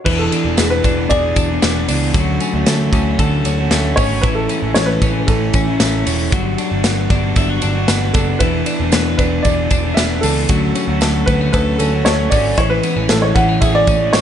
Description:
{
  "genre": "jangly indie pop",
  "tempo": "115 BPM",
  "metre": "4/4",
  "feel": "straight",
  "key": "unclear",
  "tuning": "A4 = 441 Hz",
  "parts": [
    { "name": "warm upright piano", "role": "melody", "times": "0.0-14.2 s", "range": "G#4 to F#5", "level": "-20 LUFS", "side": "equal", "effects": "dub echo" },
    { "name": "overdriven semi-hollow guitar", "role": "accompaniment", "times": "0.0-14.2 s", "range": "A2 to G#4", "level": "-21 LUFS", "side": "right 4 dB", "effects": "none" },
    { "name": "twelve-string electric guitar", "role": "arpeggios", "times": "0.1-14.2 s", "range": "E3 to A4", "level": "-21 LUFS", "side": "left 7 dB", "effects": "dub echo" },
    { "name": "vintage muted picked electric bass", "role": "bass", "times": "0.1-14.2 s", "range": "E1 to D2", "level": "-19 LUFS", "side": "equal", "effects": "none" },
    { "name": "modern studio drum kit", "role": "drums", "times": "0.1-14.2 s", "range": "crash cymbal, hi-hat, kick drum, ride cymbal, snare drum", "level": "-18 LUFS", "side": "equal", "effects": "none" },
    { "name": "tambourine", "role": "percussion", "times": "0.1-14.2 s", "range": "none", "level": "-31 LUFS", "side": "right 7 dB", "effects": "dub echo" }
  ],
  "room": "light reverb",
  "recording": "echo-heavy mix, nothing above 10.4 kHz",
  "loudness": "-13 LUFS",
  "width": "side -9 dB against mid",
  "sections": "0.1-14.2 A section",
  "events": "none",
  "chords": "0.1 E7; 2.2 Dmaj7; 4.2 Amaj7; 6.3 Gmaj7; 8.4 E7; 10.5 Dmaj7; 12.6 Amaj7"
}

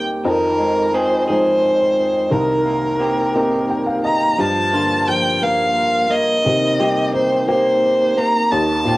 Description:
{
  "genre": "acoustic folk-pop ballad",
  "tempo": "58 BPM (dotted quarters)",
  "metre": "6/8",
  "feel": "straight",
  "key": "unclear",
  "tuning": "A4 = 441 Hz",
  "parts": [
    { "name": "warm upright piano", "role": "accompaniment", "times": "0.0-9.0 s", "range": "C2 to G5", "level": "-22 LUFS", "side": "left 1 dB", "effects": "cassette tape" },
    { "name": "electric guitar through a small old amp", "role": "arpeggios", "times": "0.0-9.0 s", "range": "Eb3 to Ab4", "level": "-21 LUFS", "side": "right 1 dB", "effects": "harmonic tremolo, cassette tape" },
    { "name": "rich violin", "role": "melody", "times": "0.3-9.0 s", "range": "Bb4 to Bb5", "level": "-17 LUFS", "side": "equal", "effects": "cassette tape" }
  ],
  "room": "light reverb",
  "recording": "home recording on cassette",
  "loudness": "-15 LUFS",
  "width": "side -19 dB against mid",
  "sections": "0.0-4.4 A section; 4.4-9.0 B section",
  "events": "none",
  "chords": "0.2 Fm7; 2.3 Cm7; 4.4 Gm7; 6.5 Cm7"
}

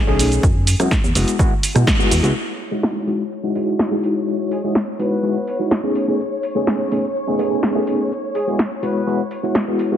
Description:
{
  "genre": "filtered disco house",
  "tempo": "125 BPM",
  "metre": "4/4",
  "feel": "straight",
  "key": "E major",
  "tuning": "A4 = 438 Hz",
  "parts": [
    { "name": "overdriven reed electric piano", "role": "accompaniment", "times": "0.0-10.0 s", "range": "G#3 to G#4", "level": "-20 LUFS", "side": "equal", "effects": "fast tremolo, phaser, sidechain pumping, low-pass filter" },
    { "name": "plucky analog bass", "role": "bass", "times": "0.1-2.3 s", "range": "F#1 to B2", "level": "-18 LUFS", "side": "equal", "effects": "sidechain pumping, low-pass filter" },
    { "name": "punchy analog drum machine", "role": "drums", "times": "0.2-10.0 s", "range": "cabasa, hi-hat, rim click, snare drum", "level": "-21 LUFS", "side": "equal", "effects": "low-pass filter on snare, sidechain pumping on hats, low-pass filter on hats, sidechain pumping on perc, low-pass filter on perc" },
    { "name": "electronic kick drum", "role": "drums", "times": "0.4-2.0 s", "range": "none", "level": "-18 LUFS", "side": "equal", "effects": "none" },
    { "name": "clear studio string section", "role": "sustained chords", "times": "2.4-10.0 s", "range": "C#5", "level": "-28 LUFS", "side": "left 1 dB", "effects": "vintage 12-bit sampler grit, sidechain pumping, low-pass filter" },
    { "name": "brilliant horn section", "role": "melody", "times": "4.5-9.2 s", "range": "G#3 to B4", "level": "-26 LUFS", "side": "equal", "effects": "vintage 12-bit sampler grit, sidechain pumping, low-pass filter" }
  ],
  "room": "moderate lush hall reverb, RT60 1.8 s",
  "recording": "heavily compressed radio sound, multiband compression",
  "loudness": "-16 LUFS",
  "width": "side -10 dB against mid",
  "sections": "0.0-2.4 A section; 2.4-10.0 B section",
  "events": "filter sweep 0.0-2.4, 2.4-10.0; band accent 1.9",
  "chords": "0.4 F#9sus4; 2.4 Emaj9; 6.0 B13; 8.1 F#9sus4"
}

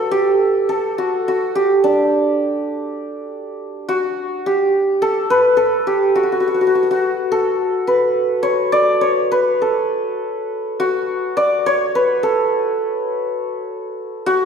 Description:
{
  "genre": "persian",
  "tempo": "69 BPM (dotted quarters)",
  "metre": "6/8",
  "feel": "straight",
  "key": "unclear",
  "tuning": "A4 = 439 Hz",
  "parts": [
    { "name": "santur", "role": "solo", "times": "0.0-14.5 s", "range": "D4 to D5", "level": "-16 LUFS", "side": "equal", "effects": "none" }
  ],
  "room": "wet recital hall reverb, RT60 1.7 s",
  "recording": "recorded in a church or concert hall",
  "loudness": "-15 LUFS",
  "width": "side -6 dB against mid",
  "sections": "0.0-3.6 A section; 3.6-14.5 B section",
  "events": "none",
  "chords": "none"
}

